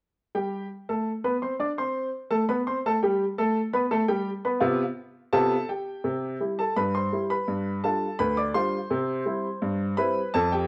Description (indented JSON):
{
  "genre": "ragtime piano",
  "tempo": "84 BPM",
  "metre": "2/4",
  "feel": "straight",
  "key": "C major",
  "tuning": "A4 = 440 Hz",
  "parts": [
    { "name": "clear upright piano", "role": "solo", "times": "0.3-10.7 s", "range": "D2 to D6", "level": "-27 LUFS", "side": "equal", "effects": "none" }
  ],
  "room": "moderate large studio reverb, RT60 0.9 s",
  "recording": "band playing live in one room",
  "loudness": "-27 LUFS",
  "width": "mono",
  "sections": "0.4-6.1 A section; 6.1-10.7 B section",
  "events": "none",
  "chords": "0.4 C5; 3.2 G7; 6.1 C; 7.5 G7; 8.9 C"
}